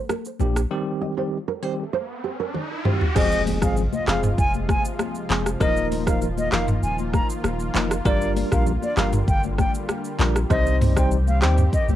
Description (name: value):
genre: afrobeats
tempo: 98 BPM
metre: 4/4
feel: straight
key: F dorian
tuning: A4 = 440 Hz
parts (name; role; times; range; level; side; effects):
- nylon-string guitar; riff; 0.0-3.0 s; G4 to Eb5; -29 LUFS; right 10 dB; cassette tape, analog delay
- afro-pop drum kit; drums; 0.1-12.0 s; crash cymbal, handclaps, hi-hat, kick drum, rim click, shaker, toms; -23 LUFS; equal; cassette tape
- congas; percussion; 0.1-12.0 s; none; -32 LUFS; left 13 dB; none
- bell-like tine electric piano; accompaniment; 0.4-11.6 s; Eb3 to C5; -26 LUFS; equal; fast stereo tremolo, cassette tape
- punchy sub bass; bass; 0.4-12.0 s; Eb1 to Eb2; -24 LUFS; equal; none
- riser and impact; sound effects; 1.4-5.6 s; none; -33 LUFS; right 1 dB; none
- silver concert flute; melody; 3.2-11.9 s; D5 to Bb5; -27 LUFS; left 1 dB; cassette tape, analog delay, plate reverb
- lush unison pad; sustained chords; 3.8-12.0 s; C3 to G4; -32 LUFS; equal; chorus, cassette tape
room: little or no reverb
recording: home recording on cassette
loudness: -20 LUFS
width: side -12 dB against mid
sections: 0.0-3.2 A section; 3.2-12.0 B section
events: riser 1.4-3.2; drum fill 2.5-3.2; impact 3.2-5.6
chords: 0.0 Gm7; 0.7 Cm; 3.2 Fm; 5.6 Ebsus2; 8.1 Gm7; 10.5 Cm